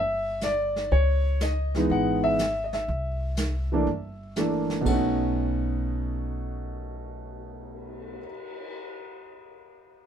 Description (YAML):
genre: jazz piano trio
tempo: 122 BPM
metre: 4/4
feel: swing 67% on 8ths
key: B mixolydian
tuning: A4 = 440 Hz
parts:
  - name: warm concert grand piano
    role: melody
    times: 0.0-8.3 s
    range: B2 to F#5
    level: -26 LUFS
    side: equal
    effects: none
  - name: upright bass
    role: bass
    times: 0.0-8.2 s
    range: G1 to C#2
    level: -29 LUFS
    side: equal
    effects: none
  - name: vintage brush drum kit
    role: drums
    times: 0.4-8.7 s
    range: brushed snare drum, crash cymbal, cymbal swell, hi-hat, kick drum, snare drum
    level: -35 LUFS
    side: right 1 dB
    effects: none
room: light reverb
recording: minimal, uncompressed stereo recording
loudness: -24 LUFS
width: side -9 dB against mid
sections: 0.0-4.9 A section; 4.9-8.8 B section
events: none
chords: 0.0 Cadd9 (rootless); 0.9 C#m9; 2.9 C13; 4.9 B9